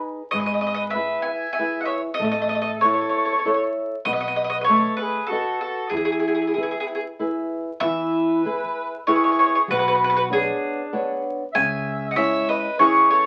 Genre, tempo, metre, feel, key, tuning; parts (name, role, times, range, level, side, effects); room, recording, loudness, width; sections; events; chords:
italian folk, Italian serenade; 96 BPM; 3/4; swing 53% on 8ths; E major; A4 = 440 Hz
flamenco guitar; accompaniment; 0.0-13.3 s; B2 to D#5; -28 LUFS; equal
mandolin; melody; 0.3-13.3 s; G#4 to G#5; -23 LUFS; equal
mellow soprano saxophone; second line; 0.3-13.3 s; D4 to E5; -32 LUFS; equal
upright bass; bass; 0.3-12.4 s; G#1 to E2; -40 LUFS; equal
wet studio ambience, RT60 0.5 s; very old 78 rpm record, vinyl crackle; -22 LUFS; mono
0.0-7.8 A section; 7.8-13.3 A section
0.3 E/G#; 2.2 A; 4.1 B7; 5.9 E; 9.7 Bmadd9; 11.5 C#m